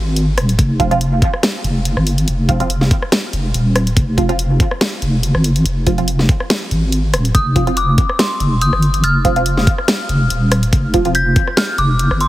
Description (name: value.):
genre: deep dubstep.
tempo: 142 BPM.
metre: 4/4.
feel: swing 54% on 16ths, half-time.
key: F dorian.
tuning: A4 = 440 Hz.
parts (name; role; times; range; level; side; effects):
deep soft wobble bass; bass; 0.0-12.3 s; Eb1 to Ab1; -15 LUFS; equal; chorus.
dubstep drum kit; drums; 0.2-12.3 s; hi-hat, rim click, snare drum; -19 LUFS; equal; none.
electronic kick drum; drums; 0.6-11.5 s; none; -15 LUFS; equal; none.
filtered dub chord stab; stabs; 0.8-11.1 s; F3 to F4; -22 LUFS; right 3 dB; phaser, wide subtle chorus, dub echo.
dark detuned synth bell; melody; 7.3-12.3 s; C6 to G6; -19 LUFS; left 1 dB; chorus, dub echo.
room: light reverb.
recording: heavily compressed radio sound.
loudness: -13 LUFS.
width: side -15 dB against mid.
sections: 0.0-12.3 A section.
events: none.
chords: 0.0 F5.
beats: 0.16 | 0.59 1.01 1.43 1.85 | 2.28 2.70 3.12 3.54 | 3.97 4.39 4.81 5.23 | 5.66 6.08 6.50 6.92 | 7.35 7.77 8.19 8.61 | 9.04 9.46 9.88 10.30 | 10.73 11.15 11.57 11.99.